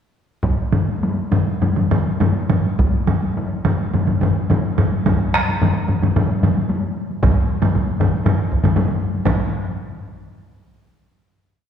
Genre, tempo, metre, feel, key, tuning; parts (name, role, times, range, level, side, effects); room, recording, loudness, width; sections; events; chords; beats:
japanese traditional, taiko drum ensemble; 101-131 BPM; 4/4; straight
taiko ensemble; percussion; 0.4-9.5 s; -24 LUFS; left 1 dB
taiko ensemble; percussion; 0.4-9.5 s; -22 LUFS; right 1 dB
solo taiko drums; percussion; 0.7-9.7 s; -20 LUFS; left 3 dB
taiko ensemble; percussion; 0.7-9.7 s; -21 LUFS; right 4 dB
wet scoring stage reverb, RT60 1.9 s; heard from further back in the room; -16 LUFS; side -8 dB against mid
0.4-9.3 A section; 9.3-11.2 final hit
speeding up 0.4-11.2
| 0.43 1.02 1.61 2.20 | 2.79 3.36 3.94 4.50 | 5.06 5.61 6.16 6.70 | 7.22 7.74 8.26 8.76 | 9.26